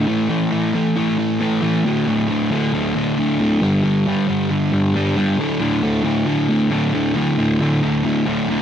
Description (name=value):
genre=metal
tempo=136 BPM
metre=4/4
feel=straight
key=unclear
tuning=A4 = 440 Hz
part: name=sludgy distorted guitar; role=solo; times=0.0-8.6 s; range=D2 to A3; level=-16 LUFS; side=equal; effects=overdrive
room=little or no reverb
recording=dry, close 1970s-style studio recording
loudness=-16 LUFS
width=side -9 dB against mid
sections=0.0-8.6 A section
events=half time 0.0-8.6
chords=0.1 A5; 1.8 D5; 3.6 G5; 5.4 D5